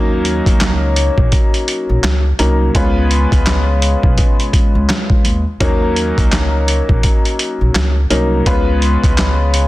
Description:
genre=hip hop, boom-bap hip-hop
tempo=84 BPM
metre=4/4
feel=swing 61% on 16ths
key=Eb minor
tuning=A4 = 441 Hz
part: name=warm upright piano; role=accompaniment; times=0.0-9.7 s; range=Gb3 to Cb5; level=-17 LUFS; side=left 1 dB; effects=cassette tape, high-pass filter, low-pass filter
part: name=upright bass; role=bass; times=0.0-9.7 s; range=Bb1 to Eb2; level=-16 LUFS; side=equal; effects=none
part: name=boom bap sampler-style drum kit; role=drums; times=0.2-9.7 s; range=handclaps, hi-hat, kick drum, snare drum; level=-15 LUFS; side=equal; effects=vintage 12-bit sampler grit
room=small room ambience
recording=dense, heavily limited modern master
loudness=-12 LUFS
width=side -17 dB against mid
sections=0.0-9.7 A section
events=none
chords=0.0 Ebm7; 2.7 Db7; 5.6 Ebm7; 8.5 Db7

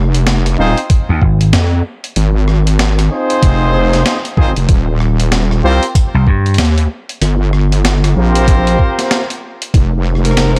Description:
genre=glitch hop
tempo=95 BPM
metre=4/4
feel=swing 61% on 16ths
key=F minor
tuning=A4 = 439 Hz
part: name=wobble bass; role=bass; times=0.0-10.6 s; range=Eb1 to F2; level=-14 LUFS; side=equal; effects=chorus
part: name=boom bap sampler-style drum kit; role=drums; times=0.1-10.6 s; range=hi-hat, rim click, snare drum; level=-21 LUFS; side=equal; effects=none
part: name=bright horn section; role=stabs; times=0.6-9.3 s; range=C4 to C5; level=-18 LUFS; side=equal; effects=sidechain pumping, delay
part: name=electronic kick drum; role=drums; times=0.9-9.9 s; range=none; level=-14 LUFS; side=equal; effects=none
part: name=vintage slap bass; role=bass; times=1.1-1.5, 6.1-6.6 s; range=Ab1 to G2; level=-13 LUFS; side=equal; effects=none
part: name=dark analog pad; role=sustained chords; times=10.0-10.6 s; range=Ab3 to C5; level=-24 LUFS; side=equal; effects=chorus, phaser, vintage 12-bit sampler grit, sidechain pumping
part: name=warm trumpet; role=melody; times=10.2-10.6 s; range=Bb4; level=-21 LUFS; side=equal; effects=none
room=light reverb, digital ambience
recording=dark, warm production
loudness=-13 LUFS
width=mono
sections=0.0-10.6 A section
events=break 9.1-9.7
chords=0.0 Fm7; 4.7 Eb6; 9.7 Fm7

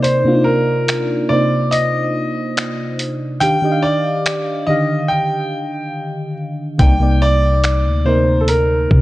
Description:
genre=contemporary R&B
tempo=71 BPM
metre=4/4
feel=straight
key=C minor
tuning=A4 = 440 Hz
part: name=clear concert grand piano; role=melody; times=0.0-9.0 s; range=A4 to G5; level=-18 LUFS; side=equal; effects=digital delay
part: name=mellow FM electric piano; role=accompaniment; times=0.0-9.0 s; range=C3 to F5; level=-18 LUFS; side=equal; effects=chorus
part: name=dusty soul sampler-style drum kit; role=drums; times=0.0-9.0 s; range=finger snaps, hi-hat, kick drum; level=-18 LUFS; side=equal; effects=none
part: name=warm 808-style bass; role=bass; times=6.8-9.0 s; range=C2 to C3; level=-16 LUFS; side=equal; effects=none
room=light reverb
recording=worn, warbling old tape, cassette tape, warbly pitch drift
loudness=-14 LUFS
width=side -17 dB against mid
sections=0.0-9.0 A section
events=break 0.0-6.8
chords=0.0 Cm9; 3.4 Ebmaj9; 6.8 Cm9

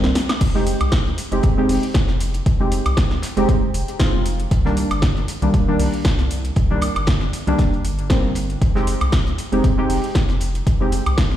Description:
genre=deep house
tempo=117 BPM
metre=4/4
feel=swing 55% on 16ths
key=F minor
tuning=A4 = 440 Hz
part: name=deep mellow chord stab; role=stabs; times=0.0-10.9 s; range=Eb3 to G4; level=-22 LUFS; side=right 1 dB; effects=chorus, sidechain pumping, ping-pong delay
part: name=round analog bass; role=bass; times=0.0-11.4 s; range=F1 to C2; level=-22 LUFS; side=equal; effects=none
part: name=deep house drum kit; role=drums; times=0.0-11.4 s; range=crash cymbal, hi-hat, snare drum, woodblock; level=-25 LUFS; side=equal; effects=overdrive
part: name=cloth-damped thuddy drum kit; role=drums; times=0.1-11.3 s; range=hi-hat, snare drum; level=-38 LUFS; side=right 2 dB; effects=sidechain pumping on hats, high-pass filter on hats, high-pass filter on snare, high-pass filter on room
part: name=electronic kick drum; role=drums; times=0.4-11.3 s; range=none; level=-18 LUFS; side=equal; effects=overdrive
room=light reverb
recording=played on a big sound system in a bare room, large studio reverb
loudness=-16 LUFS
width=side -12 dB against mid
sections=0.0-11.4 A section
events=drum fill 0.0-0.4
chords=0.4 Fm7; 4.5 Cm7; 8.6 Fm7

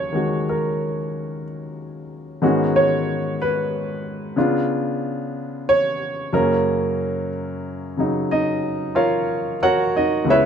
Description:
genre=solo jazz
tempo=61 BPM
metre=4/4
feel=swing 68% on 8ths, rubato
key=unclear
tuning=A4 = 438 Hz
part: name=warm baby grand piano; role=solo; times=0.0-10.5 s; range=Db2 to Gb5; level=-19 LUFS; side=equal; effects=none
room=light reverb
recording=dark, warm production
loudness=-19 LUFS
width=side -7 dB against mid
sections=0.0-10.5 A section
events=grand piano solo 0.0-10.5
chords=0.0 Ebm9; 2.4 Abm7; 4.4 Db7b9; 6.3 Gbmaj7

